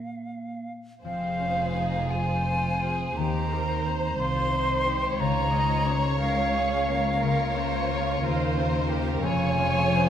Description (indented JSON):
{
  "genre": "classical, slow romantic movement for symphony orchestra",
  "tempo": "48-62 BPM (dotted quarters)",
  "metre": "12/8",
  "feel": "rubato",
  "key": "unclear",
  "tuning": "A4 = 440 Hz",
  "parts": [
    { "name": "bright silver concert flute", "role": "second line", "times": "0.0-10.1 s", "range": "F5 to C6", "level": "-28 LUFS", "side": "equal", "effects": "none" },
    { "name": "dark clarinet", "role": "second line", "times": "0.0-0.7 s", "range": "Bb3", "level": "-38 LUFS", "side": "right 3 dB", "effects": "none" },
    { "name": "rich studio violin section", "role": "melody", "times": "1.0-10.1 s", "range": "C5 to Db5", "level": "-35 LUFS", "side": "left 1 dB", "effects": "none" },
    { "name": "warm studio violin section", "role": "second line", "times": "1.0-10.1 s", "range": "C4 to C5", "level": "-34 LUFS", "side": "left 1 dB", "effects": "none" },
    { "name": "concert harp", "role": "arpeggios", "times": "1.0-10.1 s", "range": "F2 to C5", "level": "-31 LUFS", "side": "left 5 dB", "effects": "none" },
    { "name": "warm studio cello section", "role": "bass", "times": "1.0-10.1 s", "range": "C2 to F2", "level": "-31 LUFS", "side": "right 2 dB", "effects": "none" },
    { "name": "warm studio double bass section", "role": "bass", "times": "1.0-10.1 s", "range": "F1 to Eb2", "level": "-32 LUFS", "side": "right 3 dB", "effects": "none" },
    { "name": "warm studio viola section", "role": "accompaniment", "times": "3.2-10.1 s", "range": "G4 to Eb5", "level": "-32 LUFS", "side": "right 2 dB", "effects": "none" }
  ],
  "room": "wet recital hall reverb, RT60 1.5 s",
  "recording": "none",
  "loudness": "-23 LUFS",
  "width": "side -9 dB against mid",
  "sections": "0.0-1.0 A section; 1.0-10.1 B section",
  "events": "none",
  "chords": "0.0 Bb5; 1.0 Fm; 3.2 Cm/Eb; 5.2 Bbm/Db; 9.2 Db/F"
}